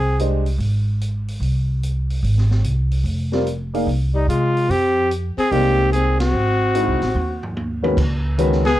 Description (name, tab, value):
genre	modal jazz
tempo	146 BPM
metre	4/4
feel	swing 66% on 8ths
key	F dorian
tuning	A4 = 440 Hz
part	clear trumpet	melody	0.0-0.2, 4.2-8.8 s	Eb4 to Ab4	-20 LUFS	equal	plate reverb
part	clear alto saxophone	second line	0.0-0.2, 4.1-8.8 s	G3 to C4	-24 LUFS	left 4 dB	none
part	upright bass	bass	0.0-8.8 s	F1 to C3	-20 LUFS	equal	none
part	warm baby grand piano	accompaniment	0.2-0.4, 3.3-8.6 s	Eb3 to F5	-21 LUFS	left 1 dB	none
part	open jazz drum kit	drums	0.2-8.8 s	crash cymbal, hi-hat, kick drum, ride cymbal, snare drum, toms	-30 LUFS	equal	none
room	light reverb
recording	dark, warm production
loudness	-17 LUFS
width	side -14 dB against mid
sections	0.0-8.0 A section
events	band accent 6.1; drum fill 7.2-8.0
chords	0.0 Fm6; 6.3 Ab7b13; 8.0 C#7sus2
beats	0.18 0.59 1.00 | 1.41 1.82 2.23 2.64 | 3.05 3.46 3.87 4.28 | 4.69 5.10 5.51 5.92 | 6.33 6.74 7.15 7.56 | 7.97 8.38 8.79